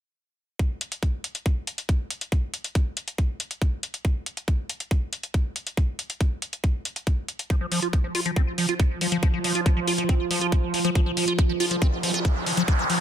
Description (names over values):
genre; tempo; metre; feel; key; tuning
psychedelic trance; 139 BPM; 4/4; straight; unclear; A4 = 440 Hz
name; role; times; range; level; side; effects
electronic hi-hat; drums; 0.6-13.0 s; none; -29 LUFS; left 1 dB; none
electronic kick drum; drums; 0.6-12.8 s; none; -22 LUFS; equal; none
bubbling stepped-filter texture; sustained chords; 7.5-13.0 s; F3; -29 LUFS; right 3 dB; chorus, built-in reverb, sidechain pumping
liquid acid bass; riff; 7.5-13.0 s; F3 to F4; -27 LUFS; moving between left 5 dB and right 4 dB; phaser, auto-pan, sidechain pumping, digital delay
riser; sound effects; 11.5-13.0 s; none; -29 LUFS; equal; none
room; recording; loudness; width
digital ambience; dense, heavily limited modern master; -23 LUFS; side -10 dB against mid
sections
0.6-13.0 A section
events
riser 11.5-13.0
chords
0.6 F5